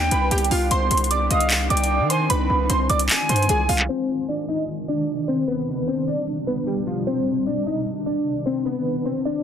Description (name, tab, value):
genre	hip hop, trap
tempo	151 BPM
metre	4/4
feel	half-time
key	C harmonic minor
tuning	A4 = 443 Hz
part	silver concert flute	second line	0.0-3.9 s	F5 to Ab5	-27 LUFS	left 3 dB	tape echo
part	granular cloud pad	sustained chords	0.0-9.4 s	C2 to G4	-28 LUFS	right 1 dB	built-in reverb
part	hard-hitting 808-style bass	bass	0.0-3.9 s	C2 to Eb3	-22 LUFS	equal	none
part	glassy digital keys	melody	0.1-9.4 s	F3 to Eb6	-23 LUFS	equal	chorus, low-pass filter
part	trap drum kit	drums	0.1-9.4 s	handclaps, hi-hat	-23 LUFS	left 1 dB	overdrive
room	light reverb, digital ambience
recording	dense, heavily limited modern master, low-pass filter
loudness	-19 LUFS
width	side -8 dB against mid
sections	0.0-3.9 A section; 3.9-9.4 B section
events	filter sweep 3.9-9.4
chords	0.0 G/C; 0.7 Cmadd9; 2.3 Fm7/C; 3.9 Cmadd9; 5.5 G/C; 7.1 Cmadd9; 8.7 Fm7/C